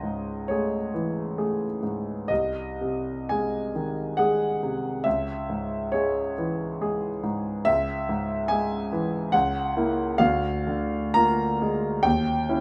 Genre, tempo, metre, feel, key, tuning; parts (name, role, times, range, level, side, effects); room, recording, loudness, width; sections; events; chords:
classical, romantic character piece for solo piano; 57-72 BPM; 3/4; rubato; C# minor; A4 = 440 Hz
clear concert grand piano; solo; 0.0-12.6 s; B#1 to A#5; -26 LUFS; equal
light reverb; -26 LUFS; mono
0.0-12.6 A section
0.0 Amaj7/C#; 2.3 G#/B#; 5.1 C#m; 9.3 A#dim/C#; 10.2 A#7/D; 12.1 D#7b9